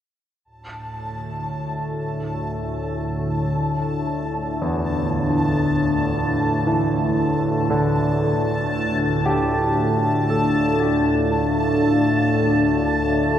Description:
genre	ambient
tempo	58 BPM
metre	4/4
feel	straight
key	D minor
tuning	A4 = 440 Hz
part	deep dark ambient pad	sustained chords	3.3-13.4 s	D4 to F5	-23 LUFS	left 1 dB	chorus, built-in reverb
part	organ-like drone	drone	0.8-13.4 s	D2 to A2	-23 LUFS	equal	ensemble chorus, built-in reverb
part	bubbling stepped-filter texture	texture	0.7-13.4 s	A5	-27 LUFS	equal	chorus, built-in reverb
part	warm concert grand piano	arpeggios	4.6-13.4 s	E2 to A4	-26 LUFS	equal	diffuse ambient delay
room	wet cathedral reverb, RT60 7.0 s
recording	in a vast, echoing space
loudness	-18 LUFS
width	side -10 dB against mid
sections	0.4-13.4 A section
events	none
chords	0.4 Dm

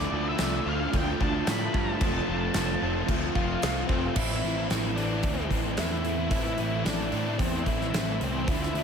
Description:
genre	rock, shoegaze and dream pop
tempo	111 BPM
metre	4/4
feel	straight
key	A minor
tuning	A4 = 440 Hz
part	octave-fuzz lead guitar	melody	0.0-8.8 s	C4 to B5	-33 LUFS	left 2 dB	distortion, ping-pong delay
part	electric guitar through a small old amp	arpeggios	0.0-8.8 s	E3 to D4	-39 LUFS	equal	none
part	crunchy overdriven guitar	riff	0.0-8.8 s	A2 to F4	-34 LUFS	left 8 dB	ensemble chorus
part	crunchy overdriven guitar	riff	0.0-8.8 s	A2 to F4	-34 LUFS	right 9 dB	reverse reverb
part	overdriven electric guitar	riff	0.0-8.8 s	A2 to F4	-34 LUFS	equal	ensemble chorus
part	fuzz picked electric bass	bass	0.0-8.8 s	F1 to A2	-32 LUFS	equal	overdrive
part	gated 80s drum kit	drums	0.4-8.8 s	crash cymbal, hi-hat, kick drum, snare drum	-31 LUFS	equal	none
part	tambourine	percussion	0.4-3.7 s	none	-48 LUFS	right 7 dB	none
room	moderate huge ambient reverb, RT60 5.3 s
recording	dreamy mix soaked in reverb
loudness	-25 LUFS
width	side -6 dB against mid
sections	0.0-4.2 A section; 4.2-8.8 B section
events	none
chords	0.0 Dm; 2.0 F; 4.2 Am

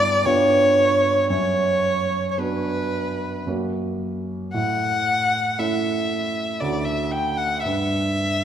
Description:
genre	classical, romantic duo for violin and grand piano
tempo	55-59 BPM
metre	3/4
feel	rubato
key	B minor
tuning	A4 = 442 Hz
part	rich violin	melody	0.0-8.4 s	B4 to G5	-20 LUFS	equal	none
part	warm grand piano	accompaniment	0.0-8.4 s	D2 to F#4	-24 LUFS	right 2 dB	none
room	wet concert hall reverb, RT60 2.3 s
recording	minimal, uncompressed stereo recording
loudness	-19 LUFS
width	side -9 dB against mid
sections	0.0-8.4 A section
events	none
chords	0.2 G7; 1.3 Bm/F#; 3.5 F#; 4.5 A; 6.6 Dmaj7; 7.6 N.C.

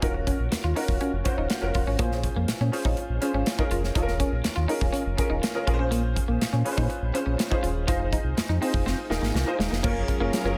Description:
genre	polished 1980s jazz-funk pop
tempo	122 BPM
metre	4/4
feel	straight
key	Bb minor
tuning	A4 = 441 Hz
part	clear grand piano	accompaniment	0.0-10.6 s	Db4 to C5	-32 LUFS	equal	ensemble chorus
part	electric guitar at the edge of break-up	riff	0.0-10.5 s	Ab3 to F4	-34 LUFS	equal	subtle chorus
part	sub bass with octave	bass	0.0-10.5 s	Eb1 to Bb2	-30 LUFS	equal	none
part	modern studio drum kit	drums	0.0-10.4 s	crash cymbal, hi-hat, kick drum, snare drum	-30 LUFS	equal	none
part	warm studio string section	sustained chords	9.8-10.6 s	Gb3 to Bb4	-34 LUFS	equal	none
room	light reverb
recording	none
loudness	-26 LUFS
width	mono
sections	0.0-9.8 A section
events	drum fill 8.9-9.8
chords	0.0 Ebm9; 2.0 Bbm7; 4.0 Eb7sus4; 5.7 Bbm7; 7.9 Fm7; 9.8 Gbmaj7

